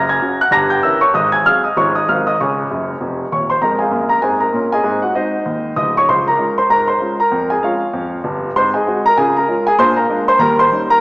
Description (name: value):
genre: jazz, stride piano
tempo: 194 BPM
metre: 4/4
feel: swing 59% on 8ths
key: Db major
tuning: A4 = 440 Hz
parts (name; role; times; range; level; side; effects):
- warm concert grand piano; solo; 0.0-11.0 s; D1 to Bb6; -13 LUFS; equal; none
room: wet concert hall reverb, RT60 2.1 s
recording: recorded in a church or concert hall, small speaker sound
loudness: -13 LUFS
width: side -24 dB against mid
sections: 0.0-3.6 A section; 3.6-11.0 B section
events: grand piano fill 2.7-3.6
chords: 0.0 Gb; 0.5 Gdim7; 1.1 Ab7; 1.8 Db/Ab; 2.1 Ab9; 2.4 Db; 3.6 Db/F; 4.8 Ab7; 6.1 Db; 7.3 Db/F; 8.5 Ab7; 9.2 Db; 9.8 Bb7; 10.4 Eb7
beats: 0.22 0.53 0.84 | 1.14 1.45 1.76 2.07 | 2.38 2.69 2.99 3.30 | 3.61 3.92 4.23 4.54 | 4.85 5.15 5.46 5.77 | 6.08 6.39 6.70 7.01 | 7.31 7.62 7.93 8.24 | 8.55 8.86 9.16 9.47 | 9.78 10.09 10.40 10.71